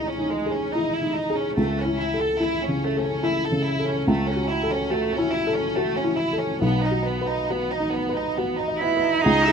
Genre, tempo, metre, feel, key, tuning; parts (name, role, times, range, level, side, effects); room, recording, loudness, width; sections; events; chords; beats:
neoclassical piano and strings; 70 BPM; 3/4; uneven beats, rubato; A4 = 439 Hz
rich chamber violin section; melody; 0.0-9.5 s; G#3 to E5; -26 LUFS; right 2 dB
felt-muted upright piano; accompaniment; 0.0-9.5 s; B1 to D#5; -24 LUFS; left 1 dB
warm cello; second line; 8.8-9.5 s; D#4 to E4; -19 LUFS; right 4 dB
rich viola; accompaniment; 9.2-9.5 s; E4 to G#4; -24 LUFS; right 2 dB
little or no reverb; close, detailed microphones; -21 LUFS; side -6 dB against mid
0.0-9.2 A section
0.0 C#madd9; 1.6 A/C#; 4.1 F#m7/C#; 6.6 B
0.74 | 1.58 2.42 3.25 | 4.08 4.92 5.76 | 6.63 7.50 8.38 | 9.24